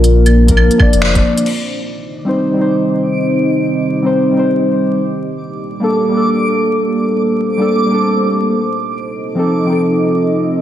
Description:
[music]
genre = future garage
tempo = 135 BPM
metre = 4/4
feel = swing 60% on 16ths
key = unclear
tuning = A4 = 440 Hz
[part]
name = muted felt-like synth keys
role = accompaniment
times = 0.0-10.6 s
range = F3 to D5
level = -14 LUFS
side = left 1 dB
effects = chorus, vintage 12-bit sampler grit, sidechain pumping, diffuse ambient delay
[part]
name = deep dark ambient pad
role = sustained chords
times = 0.0-10.6 s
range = Bb3 to Eb5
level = -18 LUFS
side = right 2 dB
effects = chorus, built-in reverb, sidechain pumping
[part]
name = soft dub sub bass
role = bass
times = 0.0-1.2 s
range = F1 to Bb1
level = -11 LUFS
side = equal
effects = none
[part]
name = organic electronic drum kit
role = drums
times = 0.0-1.6 s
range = claves, crash cymbal, finger snaps, hi-hat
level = -19 LUFS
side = right 1 dB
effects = overdrive
[part]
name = electronic kick drum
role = drums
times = 0.5-1.2 s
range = none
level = -13 LUFS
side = equal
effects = none
[part]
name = backwards swelling texture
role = texture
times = 2.7-10.6 s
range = D6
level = -23 LUFS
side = right 2 dB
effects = built-in reverb
[sound]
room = wet plate reverb, RT60 1.2 s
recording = dreamy mix soaked in reverb, vinyl crackle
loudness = -12 LUFS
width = side -11 dB against mid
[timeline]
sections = 0.0-1.5 A section; 1.5-10.6 B section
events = band accent 1.0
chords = 0.0 Bb; 1.5 Cm; 5.0 Gmadd9; 8.6 F7

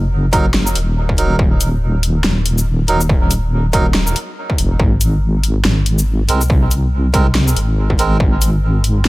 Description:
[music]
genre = deep dubstep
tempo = 141 BPM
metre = 4/4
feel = swing 59% on 16ths, half-time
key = Eb dorian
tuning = A4 = 439 Hz
[part]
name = deep soft wobble bass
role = bass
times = 0.0-9.1 s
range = Eb1 to C2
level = -15 LUFS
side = equal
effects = chorus
[part]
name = melodica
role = stabs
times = 0.3-8.2 s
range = Gb3 to Bb4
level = -22 LUFS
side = right 3 dB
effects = dub echo
[part]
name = dubstep drum kit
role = drums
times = 0.3-9.1 s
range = hi-hat, shaker, snare drum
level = -20 LUFS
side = left 1 dB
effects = studio reverb
[part]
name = electronic kick drum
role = drums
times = 0.3-8.3 s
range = none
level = -16 LUFS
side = equal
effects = distortion, studio reverb
[sound]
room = digital ambience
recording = none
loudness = -13 LUFS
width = side -19 dB against mid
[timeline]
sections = 0.0-9.1 A section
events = none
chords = 0.0 Ebm; 4.8 Ab

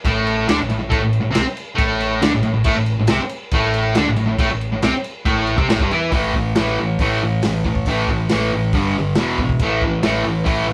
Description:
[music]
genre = garage rock duo or trio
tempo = 138 BPM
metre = 4/4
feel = straight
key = unclear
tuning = A4 = 440 Hz
[part]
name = fuzz guitar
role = riff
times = 0.0-10.7 s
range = E2 to E4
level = -20 LUFS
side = equal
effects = distortion
[part]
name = picked electric bass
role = bass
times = 0.0-10.7 s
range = E1 to E2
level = -29 LUFS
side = equal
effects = none
[part]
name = crunchy breakbeat drum kit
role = drums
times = 0.0-10.6 s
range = crash cymbal, hi-hat, kick drum, snare drum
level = -24 LUFS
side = equal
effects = none
[sound]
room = moderate studio ambience, RT60 0.5 s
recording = band playing live in one room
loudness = -18 LUFS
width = mono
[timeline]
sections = 0.0-6.1 A section; 6.1-10.7 B section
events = none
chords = 0.0 A5; 8.7 G5; 9.2 E5; 9.6 A5

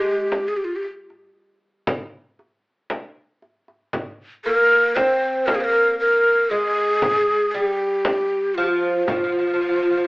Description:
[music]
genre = Arabic maqam ensemble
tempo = 116 BPM (eighths)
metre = 10/8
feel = straight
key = unclear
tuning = A4 = 441 Hz
[part]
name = breathy mellow ney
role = melody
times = 0.0-10.1 s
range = F4 to C5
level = -18 LUFS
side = equal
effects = plate reverb
[part]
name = oud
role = second line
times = 0.0-10.1 s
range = F3 to C4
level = -25 LUFS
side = right 1 dB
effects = none
[part]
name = darbuka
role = percussion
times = 0.3-9.7 s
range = none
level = -36 LUFS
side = equal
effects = none
[part]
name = frame drum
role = percussion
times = 0.3-9.3 s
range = none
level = -25 LUFS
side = equal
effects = none
[sound]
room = wet studio reverb, RT60 0.6 s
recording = AM radio sound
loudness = -18 LUFS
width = side -27 dB against mid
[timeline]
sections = 0.0-10.1 A section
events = none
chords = none

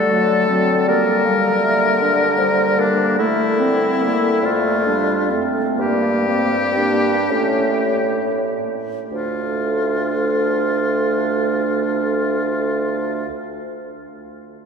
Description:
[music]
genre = classical, slow romantic movement for wind quintet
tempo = 30-53 BPM (dotted quarters)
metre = 6/8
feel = rubato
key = D minor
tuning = A4 = 440 Hz
[part]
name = mellow hollow concert flute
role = melody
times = 0.0-13.3 s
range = A4 to F5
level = -25 LUFS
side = left 4 dB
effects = none
[part]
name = bright oboe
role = second line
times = 0.0-13.3 s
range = D4 to Bb4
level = -22 LUFS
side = left 3 dB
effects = none
[part]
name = clear clarinet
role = accompaniment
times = 0.0-13.3 s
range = F#3 to D4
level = -25 LUFS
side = right 4 dB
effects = none
[part]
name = mellow French horn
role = accompaniment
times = 0.0-13.3 s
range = F#3 to C4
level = -24 LUFS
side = equal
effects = none
[part]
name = warm bassoon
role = bass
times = 0.0-13.3 s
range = D2 to D3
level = -22 LUFS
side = right 1 dB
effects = none
[sound]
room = wet cathedral reverb, RT60 5.2 s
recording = minimal, uncompressed stereo recording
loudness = -16 LUFS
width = side -6 dB against mid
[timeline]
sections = 0.0-9.1 A section; 9.1-12.5 B section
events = slowing down 2.0-9.1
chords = 0.0 D; 0.9 Gm/D; 3.2 D5; 4.4 Dm/F; 5.8 Gm; 7.3 A7; 9.1 Dm

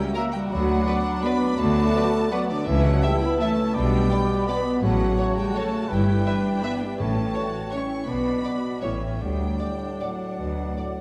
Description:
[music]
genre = classical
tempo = 145-179 BPM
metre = 3/4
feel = rubato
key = D major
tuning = A4 = 442 Hz
[part]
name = mellow large flute ensemble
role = second line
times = 0.0-11.0 s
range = F#5 to B5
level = -38 LUFS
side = equal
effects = none
[part]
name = rich chamber violin section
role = second line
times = 0.0-11.0 s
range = D5 to C#6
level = -38 LUFS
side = equal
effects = none
[part]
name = warm oboe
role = second line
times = 0.0-11.0 s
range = B4 to E5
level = -38 LUFS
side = equal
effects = none
[part]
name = mellow bassoon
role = accompaniment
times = 0.0-11.0 s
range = A2 to F#3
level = -36 LUFS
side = equal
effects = none
[part]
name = rich studio viola section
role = accompaniment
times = 0.0-11.0 s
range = B3 to F#4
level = -37 LUFS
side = equal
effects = none
[part]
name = mellow French horn section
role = sustained chords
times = 0.0-11.0 s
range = D3 to C#4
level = -28 LUFS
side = equal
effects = none
[part]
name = rich chamber violin section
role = melody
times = 0.2-10.9 s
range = A#4 to E5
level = -40 LUFS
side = equal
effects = none
[part]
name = clear trombone section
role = sustained chords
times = 0.2-10.9 s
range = A2 to B3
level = -41 LUFS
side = equal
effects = none
[part]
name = mellow trumpet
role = stabs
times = 0.2-10.9 s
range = B4 to E5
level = -38 LUFS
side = equal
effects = none
[part]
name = rich chamber double bass section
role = bass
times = 0.5-10.7 s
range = G1 to D2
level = -31 LUFS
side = equal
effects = none
[part]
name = rich symphonic cello section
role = bass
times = 0.5-10.7 s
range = C#2 to B2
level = -32 LUFS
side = equal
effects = none
[part]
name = timpani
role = percussion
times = 7.0-7.5 s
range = A2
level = -35 LUFS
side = equal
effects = none
[sound]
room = wet concert hall reverb, RT60 2.1 s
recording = none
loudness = -24 LUFS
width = mono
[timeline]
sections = 0.0-11.0 A section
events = none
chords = 0.0 F#7; 0.5 Bm/D; 2.7 A/C#; 3.8 G/B; 4.8 F#m/A; 5.9 Em/G; 7.0 A7; 8.1 Bm; 8.8 A7; 9.2 D

